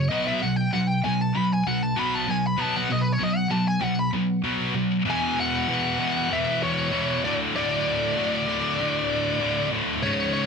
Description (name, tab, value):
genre	metal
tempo	97 BPM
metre	4/4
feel	straight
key	unclear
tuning	A4 = 440 Hz
part	high-gain lead guitar	melody	0.0-10.5 s	B4 to B5	-27 LUFS	left 2 dB	distortion
part	scooped high-gain guitar	riff	0.0-10.5 s	C#2 to B3	-23 LUFS	equal	distortion
room	light reverb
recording	dark, warm production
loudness	-22 LUFS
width	side -5 dB against mid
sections	0.0-5.1 A section; 5.1-10.5 B section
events	lead electric guitar solo 0.0-5.1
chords	0.1 B5; 5.1 E5; 7.2 D5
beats	| 0.10 0.73 1.35 1.97 | 2.59 3.21 3.83 4.45 | 5.07 5.69 6.31 6.93 | 7.54 8.16 8.78 9.40 | 10.02